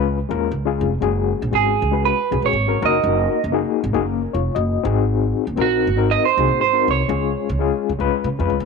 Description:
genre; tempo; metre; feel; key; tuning
uptempo 1960s-style soul; 119 BPM; 4/4; swing 58% on 8ths; F# major; A4 = 439 Hz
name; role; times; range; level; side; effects
overdriven reed electric piano; accompaniment; 0.0-8.6 s; G#3 to D#5; -21 LUFS; left 14 dB; medium tremolo
upright bass; bass; 0.0-8.7 s; E#1 to C#3; -22 LUFS; right 1 dB; none
electric guitar through a small old amp; melody; 1.6-8.6 s; F#4 to D#5; -19 LUFS; right 12 dB; none
room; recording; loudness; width
light reverb, small room ambience; 1960s-style stereo with parts hard left and right; -17 LUFS; side -4 dB against mid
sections
0.0-8.7 A section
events
none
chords
0.0 C#; 1.0 F#sus2; 2.8 D#m/F#; 4.8 G#7; 7.1 C#

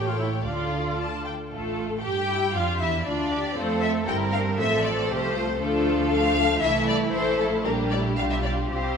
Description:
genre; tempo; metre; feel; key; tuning
quick classical-period movement for string orchestra; 116 BPM; 2/4; straight; unclear; A4 = 438 Hz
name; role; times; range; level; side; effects
warm studio violin section; melody; 0.0-9.0 s; A4 to A5; -27 LUFS; left 4 dB; none
warm studio violin section; second line; 0.0-9.0 s; A3 to D5; -29 LUFS; left 3 dB; none
warm studio viola section; accompaniment; 0.0-9.0 s; E3 to G4; -29 LUFS; right 2 dB; none
rich studio double bass section; bass; 0.0-9.0 s; G1 to G2; -30 LUFS; right 3 dB; none
warm studio cello section; bass; 0.0-9.0 s; A2 to Bb4; -32 LUFS; right 3 dB; none
room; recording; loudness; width
wet scoring stage reverb, RT60 1.9 s; none; -22 LUFS; side -6 dB against mid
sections
0.0-1.5 A section; 1.5-9.0 A section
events
none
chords
0.5 Dm; 1.5 F/A; 2.0 Em/G; 2.5 Dm; 3.6 F; 4.1 C7/G; 4.6 F/A; 5.6 Dm; 6.6 Am/C; 7.7 Gm/Bb; 8.2 G7/B

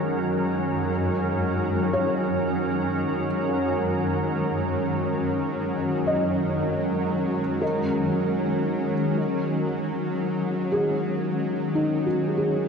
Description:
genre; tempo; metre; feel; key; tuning
ambient; 58 BPM; 4/4; straight; F# major; A4 = 435 Hz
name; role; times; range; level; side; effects
shimmering ambient pad; sustained chords; 0.0-12.7 s; F#2 to A#4; -24 LUFS; equal; chorus, built-in reverb
bowed-like drone; drone; 0.0-12.7 s; F#3; -29 LUFS; equal; built-in reverb
felt-muted upright piano; arpeggios; 1.9-12.7 s; D#4 to D#5; -29 LUFS; left 1 dB; ping-pong delay
room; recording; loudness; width
wet cathedral reverb, RT60 5.2 s; in a vast, echoing space; -22 LUFS; side -6 dB against mid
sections
0.0-12.7 A section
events
filter sweep on ambient pad 0.0-12.7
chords
0.0 C#sus4/F#; 7.6 F#69

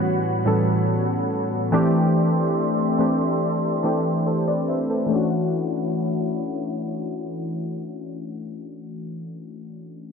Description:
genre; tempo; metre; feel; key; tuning
R&B; 71 BPM; 4/4; straight; D major; A4 = 440 Hz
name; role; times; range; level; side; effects
warm analog keys; accompaniment; 0.0-10.1 s; A2 to E5; -22 LUFS; equal; chorus, low-pass filter
mellow hollow flute section; sustained chords; 0.0-8.7 s; E4 to C6; -28 LUFS; left 1 dB; low-pass filter
room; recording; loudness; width
wet spring reverb, RT60 2.1 s; none; -20 LUFS; side -6 dB against mid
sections
0.0-5.1 A section; 5.1-8.5 B section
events
filter sweep 0.0-5.1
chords
0.0 A13; 1.7 C69; 5.1 Dmaj9

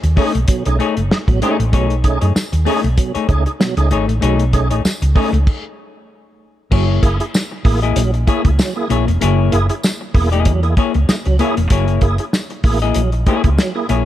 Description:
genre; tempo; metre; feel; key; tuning
funk; 96 BPM; 4/4; swing 56% on 16ths; F# mixolydian; A4 = 441 Hz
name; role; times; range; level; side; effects
semi-hollow electric guitar; accompaniment; 0.0-14.1 s; A3 to D#5; -21 LUFS; left 7 dB; spring reverb
hollow-body short-scale fingered electric bass; bass; 0.0-14.0 s; E1 to F#2; -16 LUFS; equal; none
damped 70s drum kit; drums; 0.0-14.1 s; crash cymbal, hi-hat, kick drum, snare drum; -17 LUFS; equal; none
tonewheel organ; stabs; 0.2-14.0 s; B2 to G#4; -22 LUFS; right 4 dB; overdrive, chorus vibrato, fast rotary speaker
tambourine; percussion; 2.4-13.7 s; none; -29 LUFS; left 1 dB; none
room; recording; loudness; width
little or no reverb; none; -13 LUFS; side -12 dB against mid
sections
0.0-6.7 A section; 6.7-14.1 B section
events
stop 5.5-6.7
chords
0.0 B13; 6.7 F#9

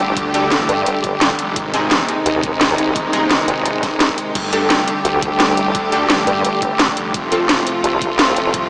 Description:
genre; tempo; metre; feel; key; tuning
dark technical drum and bass; 172 BPM; 4/4; straight; unclear; A4 = 440 Hz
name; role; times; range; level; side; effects
clear studio string section; sustained chords; 0.0-8.7 s; C3 to G4; -18 LUFS; equal; sidechain pumping
vowel-sweep wobble bass; bass; 0.0-8.5 s; Eb1 to G2; -20 LUFS; equal; chorus
snarling distorted saw bass; bass; 0.2-8.7 s; Eb1 to D2; -23 LUFS; equal; distortion, overdrive, sidechain pumping
drum and bass drum kit; drums; 0.2-8.6 s; crash cymbal, hi-hat, snare drum; -18 LUFS; equal; none
electronic kick drum; drums; 0.2-8.6 s; none; -28 LUFS; equal; overdrive
orchestra-hit-like synth stab; stabs; 0.3-7.5 s; C4 to A4; -24 LUFS; equal; none
room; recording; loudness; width
wet huge ambient reverb, RT60 7.2 s; dreamy mix soaked in reverb, small speaker sound; -14 LUFS; side -32 dB against mid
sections
0.0-8.7 A section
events
none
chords
0.0 Gsus2; 1.6 Ab; 4.4 Gsus2; 7.1 F

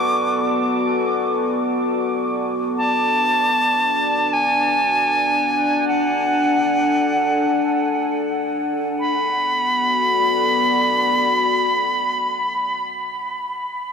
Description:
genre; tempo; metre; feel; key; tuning
ambient; free time; none; none; B dorian; A4 = 442 Hz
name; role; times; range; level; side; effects
bright reedy silver concert flute; melody; 0.0-12.9 s; F#5 to D6; -19 LUFS; right 1 dB; dub echo
deep dark ambient pad; sustained chords; 0.0-12.9 s; B3 to F#5; -22 LUFS; left 2 dB; chorus, built-in reverb
room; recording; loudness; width
moderate spring reverb, RT60 1.3 s, small room ambience; echo-heavy mix; -17 LUFS; side -6 dB against mid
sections
0.0-9.0 A section; 9.0-12.1 B section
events
none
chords
0.0 Bm7

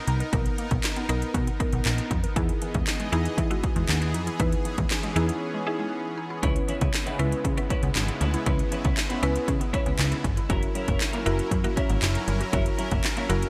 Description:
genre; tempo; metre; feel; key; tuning
dance-pop; 118 BPM; 4/4; straight; unclear; A4 = 441 Hz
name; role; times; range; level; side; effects
mallet-like synth pluck; accompaniment; 0.0-13.5 s; B3 to B4; -35 LUFS; equal; chorus, sidechain pumping
supersaw pad; sustained chords; 0.0-13.5 s; C#3 to D#5; -36 LUFS; equal; subtle chorus, sidechain pumping
mallet-like synth pluck; arpeggios; 0.1-13.4 s; E3 to A#4; -41 LUFS; equal; none
plucky analog bass; bass; 0.1-13.4 s; F#1 to E3; -29 LUFS; equal; sidechain pumping
house drum kit; drums; 0.1-13.5 s; handclaps, hi-hat, kick drum, snare drum; -29 LUFS; equal; overdrive, gated reverb
twelve-string electric guitar; riff; 6.4-13.5 s; C#4 to B4; -37 LUFS; equal; lush chorus
room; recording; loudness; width
light reverb, digital ambience; bright 1980s-style digital production; -26 LUFS; mono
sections
0.0-13.5 A section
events
break 5.4-6.4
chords
0.0 Bmaj7; 2.4 Emaj7; 6.4 C#m7; 10.5 F#7

